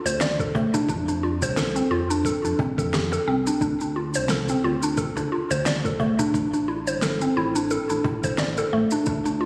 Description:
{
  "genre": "organic downtempo",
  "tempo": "88 BPM",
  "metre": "4/4",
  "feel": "swing 56% on 16ths",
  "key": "D minor",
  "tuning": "A4 = 441 Hz",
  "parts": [
    { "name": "mallet-like synth pluck", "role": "arpeggios", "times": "0.0-9.5 s", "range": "A3 to D5", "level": "-25 LUFS", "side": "equal", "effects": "chorus, cassette tape, digital delay" },
    { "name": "round analog bass", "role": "bass", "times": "0.1-9.5 s", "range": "G1 to F2", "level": "-33 LUFS", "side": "equal", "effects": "sidechain pumping" },
    { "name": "electronic shaker and snare drum", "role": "drums", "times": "0.1-9.4 s", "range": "none", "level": "-32 LUFS", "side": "equal", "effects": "overdrive" },
    { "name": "cajon", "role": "percussion", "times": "0.1-9.0 s", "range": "none", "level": "-36 LUFS", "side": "equal", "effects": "none" },
    { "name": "electronic kick drum", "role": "drums", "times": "0.4-9.2 s", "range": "none", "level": "-32 LUFS", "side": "equal", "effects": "overdrive" }
  ],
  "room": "wet concert hall reverb, RT60 1.9 s, digital ambience",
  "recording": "recorded on a phone in the room, studio reverb",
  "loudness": "-24 LUFS",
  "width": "mono",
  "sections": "0.0-9.5 A section",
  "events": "none",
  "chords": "0.0 D5; 0.9 F; 3.6 Dm; 6.3 Am"
}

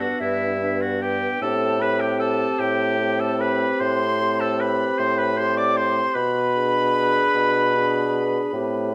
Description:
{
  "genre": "classical, slow romantic movement for wind quintet",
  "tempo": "50 BPM (dotted quarters)",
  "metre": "12/8",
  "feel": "rubato",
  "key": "unclear",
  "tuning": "A4 = 440 Hz",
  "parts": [
    { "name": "silver concert flute", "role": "melody", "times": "0.0-8.9 s", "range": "E5 to D6", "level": "-28 LUFS", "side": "equal", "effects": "none" },
    { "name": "warm oboe", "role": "second line", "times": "0.0-8.9 s", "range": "E4 to D5", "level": "-28 LUFS", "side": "equal", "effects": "none" },
    { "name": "mellow French horn", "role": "accompaniment", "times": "0.0-8.9 s", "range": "B3 to D4", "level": "-31 LUFS", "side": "equal", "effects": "none" },
    { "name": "mellow clarinet", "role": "accompaniment", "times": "0.0-8.9 s", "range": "D4 to G#4", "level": "-31 LUFS", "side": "equal", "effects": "none" },
    { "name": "mellow bassoon", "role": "bass", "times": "0.0-8.9 s", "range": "G2 to B2", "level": "-27 LUFS", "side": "equal", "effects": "none" }
  ],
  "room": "moderate recital hall reverb, RT60 1.7 s",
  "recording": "none",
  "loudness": "-21 LUFS",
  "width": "mono",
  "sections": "0.0-8.9 A section",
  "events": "none",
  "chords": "0.0 G; 1.4 Am7; 6.2 Bm6"
}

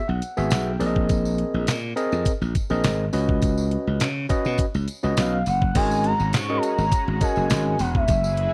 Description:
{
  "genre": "early-eighties boogie funk",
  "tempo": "103 BPM",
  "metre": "4/4",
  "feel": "straight",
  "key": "G# minor",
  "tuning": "A4 = 440 Hz",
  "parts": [
    { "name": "overdriven tine electric piano", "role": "accompaniment", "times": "0.0-7.8 s", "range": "B3 to G#5", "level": "-28 LUFS", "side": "equal", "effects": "none" },
    { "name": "slap bass", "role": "bass", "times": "0.1-8.5 s", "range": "E1 to C#3", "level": "-26 LUFS", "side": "equal", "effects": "none" },
    { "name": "detuned 8-bit digital drum machine", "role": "drums", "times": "0.2-8.5 s", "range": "crash cymbal, handclaps, hi-hat, kick drum, snare drum", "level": "-26 LUFS", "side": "equal", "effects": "none" },
    { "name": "tambourine", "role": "percussion", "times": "0.2-8.4 s", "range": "none", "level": "-42 LUFS", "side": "equal", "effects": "none" },
    { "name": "gliding portamento lead", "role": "melody", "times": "5.2-8.5 s", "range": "E5 to C#6", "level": "-27 LUFS", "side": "equal", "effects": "chorus" },
    { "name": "lush unison pad", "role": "sustained chords", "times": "5.7-8.5 s", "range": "F#3 to B4", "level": "-36 LUFS", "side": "equal", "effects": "chorus" }
  ],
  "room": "digital ambience",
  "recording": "dry, close 1970s-style studio recording",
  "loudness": "-23 LUFS",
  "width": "mono",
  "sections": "0.0-5.8 A section; 5.8-8.5 B section",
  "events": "tine electric piano fill 0.0-1.1",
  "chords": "0.0 F#9sus4; 0.8 A#9sus4; 3.1 C#9sus4; 5.8 G#9sus4"
}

